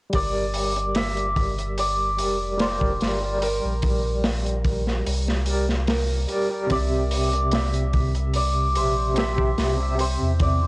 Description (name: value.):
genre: trip hop.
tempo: 73 BPM.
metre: 4/4.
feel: swing 53% on 16ths.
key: G dorian.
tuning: A4 = 440 Hz.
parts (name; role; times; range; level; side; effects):
santur; melody; 0.1-10.7 s; Bb4 to E5; -27 LUFS; equal; cassette tape, tape echo.
barky tine electric piano; accompaniment; 0.1-10.7 s; C3 to E5; -26 LUFS; equal; overdrive, tremolo, low-pass filter.
warm sub bass; bass; 0.1-10.7 s; F1 to E2; -25 LUFS; equal; tube saturation.
crunchy breakbeat drum kit; drums; 0.1-10.6 s; hi-hat, kick drum, snare drum; -27 LUFS; equal; cassette tape.
room: light reverb.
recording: home recording on cassette.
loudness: -20 LUFS.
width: side -23 dB against mid.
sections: 0.1-10.7 A section.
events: filter sweep on tine electric piano 0.1-10.7.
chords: 0.1 Gm; 6.7 C.